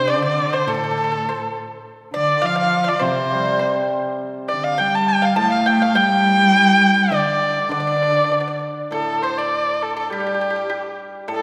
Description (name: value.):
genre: chinese traditional.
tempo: 101 BPM.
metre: 2/4.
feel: rubato.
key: D yu mode.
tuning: A4 = 444 Hz.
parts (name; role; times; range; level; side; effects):
warm erhu; melody; 0.0-11.4 s; G4 to A5; -21 LUFS; equal; none.
pipa; second line; 0.0-11.4 s; G4 to A5; -28 LUFS; equal; none.
warm cello; second line; 0.0-8.6 s; A2 to A3; -25 LUFS; equal; none.
hammered dulcimer; accompaniment; 0.0-0.1, 3.0-11.4 s; A2 to C4; -28 LUFS; equal; none.
room: wet concert hall reverb, RT60 2.3 s.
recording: recorded in a church or concert hall.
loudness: -19 LUFS.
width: mono.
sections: 0.0-8.9 A section; 8.9-11.4 B section.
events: none.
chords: none.